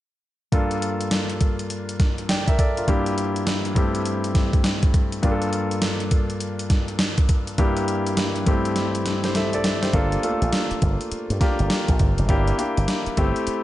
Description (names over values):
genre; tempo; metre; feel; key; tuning
R&B, new jack swing; 102 BPM; 4/4; swing 63% on 16ths; G dorian; A4 = 438 Hz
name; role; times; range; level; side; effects
warm concert grand piano; accompaniment; 0.5-13.6 s; G2 to G5; -24 LUFS; left 1 dB; none
gated 80s digital drum machine; drums; 0.5-13.6 s; hi-hat, kick drum, snare drum; -22 LUFS; equal; gated reverb, gated reverb snare, overdrive
slap bass with an envelope filter; bass; 9.9-13.5 s; F1 to G2; -22 LUFS; equal; none
room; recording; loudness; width
little or no reverb; nothing above 10.4 kHz; -20 LUFS; side -14 dB against mid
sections
0.5-9.9 A section; 9.9-13.6 B section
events
drum fill 8.8-9.9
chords
0.5 Gm7; 2.9 Gm6; 3.8 Am7/G; 5.2 Gm7; 7.6 Gm6; 8.5 C69/G; 9.9 Gm7; 12.3 Gm6